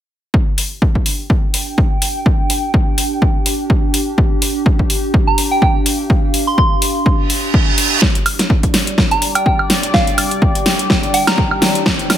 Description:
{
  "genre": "bass house",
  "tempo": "125 BPM",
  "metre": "4/4",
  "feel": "swing 56% on 16ths",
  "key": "unclear",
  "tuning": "A4 = 436 Hz",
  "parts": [
    { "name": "electronic kick drum", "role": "drums", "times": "0.3-12.0 s", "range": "none", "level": "-15 LUFS", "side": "equal", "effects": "overdrive" },
    { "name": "warbly tape-like pad", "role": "texture", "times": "1.1-12.2 s", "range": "D4 to G5", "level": "-22 LUFS", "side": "equal", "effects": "chorus, built-in reverb, sidechain pumping" },
    { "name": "big-room dance drum kit", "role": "drums", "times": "0.6-12.2 s", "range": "hi-hat, snare drum, woodblock", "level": "-17 LUFS", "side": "equal", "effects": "none" },
    { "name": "soft synth bell", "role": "melody", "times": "5.3-11.8 s", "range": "F5 to C6", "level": "-19 LUFS", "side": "right 2 dB", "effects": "chorus, ping-pong delay" },
    { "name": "reverse cymbal and riser", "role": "sound effects", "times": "7.3-12.2 s", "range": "none", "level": "-21 LUFS", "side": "right 4 dB", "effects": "none" },
    { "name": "sweeping resonant pad", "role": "sustained chords", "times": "8.0-12.2 s", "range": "G3 to D5", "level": "-23 LUFS", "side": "equal", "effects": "chorus, sidechain pumping" }
  ],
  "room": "light reverb, digital ambience",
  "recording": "none",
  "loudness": "-12 LUFS",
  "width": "side -11 dB against mid",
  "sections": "0.3-8.0 A section; 8.0-12.2 B section",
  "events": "reverse cymbal 7.3-8.0; build-up 8.0-12.2; drum fill 8.0-12.2; riser 8.0-12.2",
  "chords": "0.3 G5"
}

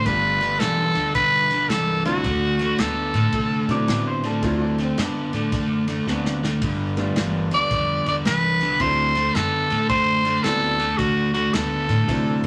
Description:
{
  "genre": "electric blues shuffle",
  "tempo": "110 BPM",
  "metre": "4/4",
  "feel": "swing 64% on 8ths",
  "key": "D mixolydian",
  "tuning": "A4 = 440 Hz",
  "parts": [
    { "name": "growling tenor saxophone", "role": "melody", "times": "0.0-3.9, 7.5-12.5 s", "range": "F#4 to D5", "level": "-23 LUFS", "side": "equal", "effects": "none" },
    { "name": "overdriven semi-hollow guitar", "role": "riff", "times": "0.0-12.5 s", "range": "G2 to B3", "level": "-26 LUFS", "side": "equal", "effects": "none" },
    { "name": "clear concert grand piano", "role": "accompaniment", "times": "0.1-12.5 s", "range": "F#3 to F#4", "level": "-31 LUFS", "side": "equal", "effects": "none" },
    { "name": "upright bass", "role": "bass", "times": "0.1-12.5 s", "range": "G1 to C3", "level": "-32 LUFS", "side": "equal", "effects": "none" },
    { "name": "natural country drum kit", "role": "drums", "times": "0.1-12.5 s", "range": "kick drum, ride cymbal, snare drum", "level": "-32 LUFS", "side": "equal", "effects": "none" },
    { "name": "electric guitar through a small old amp", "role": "second line", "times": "3.7-6.6 s", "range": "C4 to D5", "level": "-32 LUFS", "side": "equal", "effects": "none" }
  ],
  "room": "wet studio reverb, RT60 0.9 s",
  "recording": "none",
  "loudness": "-21 LUFS",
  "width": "mono",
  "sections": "0.0-12.5 A section",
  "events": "drum fill 6.1-6.6",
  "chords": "0.1 G9; 2.2 D9; 6.6 G9; 8.8 D9"
}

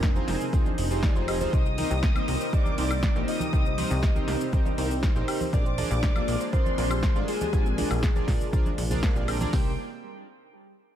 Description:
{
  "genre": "progressive house",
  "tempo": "120 BPM",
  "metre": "4/4",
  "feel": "straight",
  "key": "C minor",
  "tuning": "A4 = 441 Hz",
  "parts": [
    { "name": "soft octave-layered synth lead", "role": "melody", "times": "0.0-9.7 s", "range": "G4 to Eb5", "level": "-35 LUFS", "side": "left 2 dB", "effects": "chorus, phaser, tape echo" },
    { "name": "rich studio violin section", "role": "second line", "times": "0.0-9.7 s", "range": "G5 to Eb6", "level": "-39 LUFS", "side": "left 1 dB", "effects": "sidechain pumping, analog delay" },
    { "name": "lush unison pad", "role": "sustained chords", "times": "0.0-9.8 s", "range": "C3 to Ab4", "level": "-36 LUFS", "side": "equal", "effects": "chorus, phaser, sidechain pumping" },
    { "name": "soft round pluck", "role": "arpeggios", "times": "0.0-9.8 s", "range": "C3 to C5", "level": "-35 LUFS", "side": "left 1 dB", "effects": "lush chorus, sidechain pumping, analog delay" },
    { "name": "plucky analog bass", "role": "bass", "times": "0.0-9.8 s", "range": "F1 to C2", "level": "-29 LUFS", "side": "equal", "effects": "sidechain pumping" },
    { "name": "deep house drum kit", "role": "drums", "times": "0.0-9.6 s", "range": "hi-hat, kick drum, snare drum", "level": "-24 LUFS", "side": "equal", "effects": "overdrive" },
    { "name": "deep house drum kit", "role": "drums", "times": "0.0-9.5 s", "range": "hi-hat, shaker, snare drum, woodblock", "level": "-34 LUFS", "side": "left 1 dB", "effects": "overdrive" },
    { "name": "chorused polysynth", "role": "stabs", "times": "0.2-9.7 s", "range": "C4 to G5", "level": "-33 LUFS", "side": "right 3 dB", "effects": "sidechain pumping, analog delay" },
    { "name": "congas", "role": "percussion", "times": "0.2-9.5 s", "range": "none", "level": "-37 LUFS", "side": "right 2 dB", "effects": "none" }
  ],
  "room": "digital ambience",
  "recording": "none",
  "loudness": "-23 LUFS",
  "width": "side -11 dB against mid",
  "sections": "0.0-9.5 A section; 9.5-11.0 B section",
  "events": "drop 0.0-9.5",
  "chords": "0.0 Fm7; 1.5 Cm7; 5.5 Bb7; 9.5 Cm7"
}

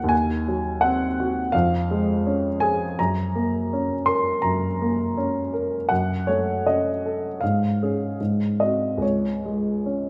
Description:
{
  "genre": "classical, romantic character piece for solo piano",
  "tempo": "72-86 BPM",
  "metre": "4/4",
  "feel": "rubato",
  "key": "Db major",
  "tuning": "A4 = 441 Hz",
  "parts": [
    { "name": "warm baby grand piano", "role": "solo", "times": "0.0-10.1 s", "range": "Db2 to C6", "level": "-23 LUFS", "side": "equal", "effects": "none" }
  ],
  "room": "wet recital hall reverb, RT60 1.5 s",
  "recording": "none",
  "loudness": "-23 LUFS",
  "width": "mono",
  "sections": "0.0-10.1 A section",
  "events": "none",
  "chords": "0.1 Cdim/Eb; 1.5 Db/F; 3.0 Gb; 5.9 Ebm7b5/Gb; 7.4 Db/Ab; 8.2 Ab7; 9.0 Db5"
}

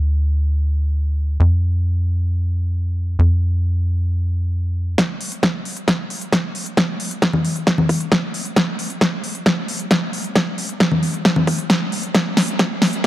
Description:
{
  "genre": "uplifting trance",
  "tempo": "134 BPM",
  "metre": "4/4",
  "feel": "straight",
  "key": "unclear",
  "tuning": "A4 = 440 Hz",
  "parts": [
    { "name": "tight sequencer bass", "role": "bass", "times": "0.0-5.0 s", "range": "D2 to F2", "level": "-16 LUFS", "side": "equal", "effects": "sidechain pumping" },
    { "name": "big-room dance drum kit", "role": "drums", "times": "5.0-13.1 s", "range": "congas, hi-hat, snare drum", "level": "-17 LUFS", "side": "equal", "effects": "overdrive, sidechain pumping on hats, sidechain pumping on perc" },
    { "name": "electronic kick drum", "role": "drums", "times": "5.0-13.1 s", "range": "none", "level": "-21 LUFS", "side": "equal", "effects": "overdrive, high-pass filter on kick" }
  ],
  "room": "moderate lush hall reverb, RT60 2.4 s",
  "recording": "dark, warm production, high-pass filter",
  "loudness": "-17 LUFS",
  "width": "side -14 dB against mid",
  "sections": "0.0-5.0 A section; 5.0-13.1 B section",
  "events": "build-up 5.0-13.1; drum fill 5.0-13.1",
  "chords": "none"
}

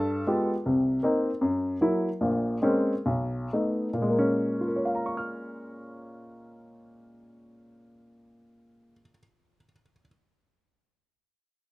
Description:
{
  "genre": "solo jazz",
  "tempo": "110-159 BPM",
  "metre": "4/4",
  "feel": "swing 64% on 8ths, rubato",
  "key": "Bb minor",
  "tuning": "A4 = 439 Hz",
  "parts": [
    { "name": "warm baby grand piano", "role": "solo", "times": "0.0-10.1 s", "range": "Bb1 to F6", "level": "-25 LUFS", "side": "equal", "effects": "none" }
  ],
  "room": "light reverb",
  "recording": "recorded outdoors, with no room sound",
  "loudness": "-24 LUFS",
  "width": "side -19 dB against mid",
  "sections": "0.7-4.1 A section; 4.1-8.3 B section",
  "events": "slowing down 0.7-4.1",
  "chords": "0.0 G7b9; 0.7 Cm7; 1.4 Gb7; 2.2 Bbm9; 3.1 B7; 4.1 Bbm7"
}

